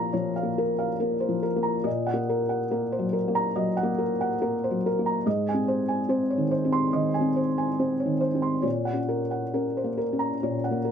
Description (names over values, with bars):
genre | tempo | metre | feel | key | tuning
neoclassical minimalist piano | 71 BPM | 4/4 | rubato | unclear | A4 = 439 Hz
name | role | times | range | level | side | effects
felt-muted upright piano | solo | 0.0-10.9 s | Ab2 to C6 | -24 LUFS | equal | none
room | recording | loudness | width
light reverb | close, detailed microphones | -24 LUFS | side -8 dB against mid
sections
0.0-10.9 A section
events
none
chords
0.0 Bbm; 1.9 Ebm/Bb; 5.3 Ab; 8.6 Gb/Bb